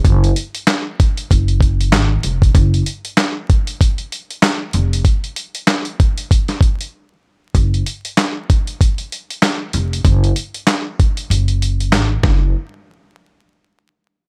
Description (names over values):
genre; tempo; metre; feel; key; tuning
hip hop, boom-bap hip-hop; 96 BPM; 4/4; swing 60% on 16ths; unclear; A4 = 441 Hz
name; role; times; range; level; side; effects
upright bass; bass; 0.0-12.5 s; F1 to Ab1; -18 LUFS; equal; none
dusty soul sampler-style drum kit; drums; 0.0-12.4 s; handclaps, hi-hat, kick drum, snare drum; -17 LUFS; equal; none
room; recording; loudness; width
little or no reverb; vinyl crackle; -16 LUFS; mono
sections
0.0-7.5 A section; 7.5-12.5 B section; 12.5-14.3 C section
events
break 6.9-7.5; kick muted 11.3-12.5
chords
none